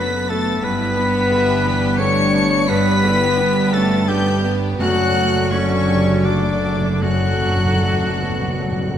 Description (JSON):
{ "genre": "cinematic, emotional film score for orchestra", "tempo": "74-89 BPM", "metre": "3/4", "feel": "rubato", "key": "unclear", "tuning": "A4 = 439 Hz", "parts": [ { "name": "dark studio violin section", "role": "melody", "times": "0.0-9.0 s", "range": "C#6 to C#7", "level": "-25 LUFS", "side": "left 1 dB", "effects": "none" }, { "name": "clear oboe", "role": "second line", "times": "0.0-9.0 s", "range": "C#4 to C#5", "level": "-26 LUFS", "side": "equal", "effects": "none" }, { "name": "concert flute", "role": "second line", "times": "0.0-8.9 s", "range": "C#5 to C#6", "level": "-27 LUFS", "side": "left 1 dB", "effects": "none" }, { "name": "dark clarinet", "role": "second line", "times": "0.0-9.0 s", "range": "C#4 to C#5", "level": "-26 LUFS", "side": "left 3 dB", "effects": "none" }, { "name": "dark studio violin section", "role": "second line", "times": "0.0-9.0 s", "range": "F#4 to E5", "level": "-28 LUFS", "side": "left 3 dB", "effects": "none" }, { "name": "clear baby grand piano", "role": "accompaniment", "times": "0.0-9.0 s", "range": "F#2 to G4", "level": "-26 LUFS", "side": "equal", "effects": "none" }, { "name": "warm studio viola section", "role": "accompaniment", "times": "0.0-9.0 s", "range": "G3 to A4", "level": "-27 LUFS", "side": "right 2 dB", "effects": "none" }, { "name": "mellow French horn section", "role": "sustained chords", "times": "0.0-8.9 s", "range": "D3 to D4", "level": "-24 LUFS", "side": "left 2 dB", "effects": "none" }, { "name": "concert harp", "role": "arpeggios", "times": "0.0-9.0 s", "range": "F#2 to D5", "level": "-29 LUFS", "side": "left 6 dB", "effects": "none" }, { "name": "rich studio double bass section", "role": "bass", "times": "0.0-9.0 s", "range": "F#1 to G1", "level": "-25 LUFS", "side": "right 3 dB", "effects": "none" }, { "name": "warm studio cello section", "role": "bass", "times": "0.0-9.0 s", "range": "F#2 to G2", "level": "-22 LUFS", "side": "right 2 dB", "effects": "none" }, { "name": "timpani", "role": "percussion", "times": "4.8-9.0 s", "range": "F#2", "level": "-26 LUFS", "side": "left 1 dB", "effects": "none" } ], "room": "wet concert hall reverb, RT60 2.2 s", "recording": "none", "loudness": "-15 LUFS", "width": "side -9 dB against mid", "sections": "0.0-9.0 A section", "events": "timpani fill 4.8-9.0", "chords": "0.0 Bm7/F#; 0.6 G; 4.8 D/F#" }